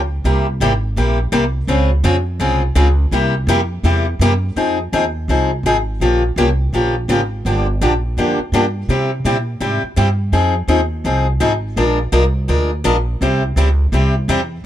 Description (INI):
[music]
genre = acoustic string swing (jazz manouche)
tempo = 167 BPM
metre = 4/4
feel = swing 62% on 8ths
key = F minor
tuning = A4 = 445 Hz
[part]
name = upright bass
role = bass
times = 0.0-14.6 s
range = G1 to C3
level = -17 LUFS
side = right 1 dB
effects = none
[part]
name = picked steel-string acoustic guitar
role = accompaniment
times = 0.3-14.4 s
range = C3 to Bb4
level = -17 LUFS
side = left 1 dB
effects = none
[sound]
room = little or no reverb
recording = dry, close 1970s-style studio recording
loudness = -14 LUFS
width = side -12 dB against mid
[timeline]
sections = 0.0-4.6 A section; 4.6-14.7 A section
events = none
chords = 0.2 C7; 1.7 Dbmaj7; 3.1 C7; 4.6 Fm7; 6.0 Gm7b5; 7.4 Gm7; 8.9 C; 10.3 Fm7; 11.8 Bb7; 13.2 C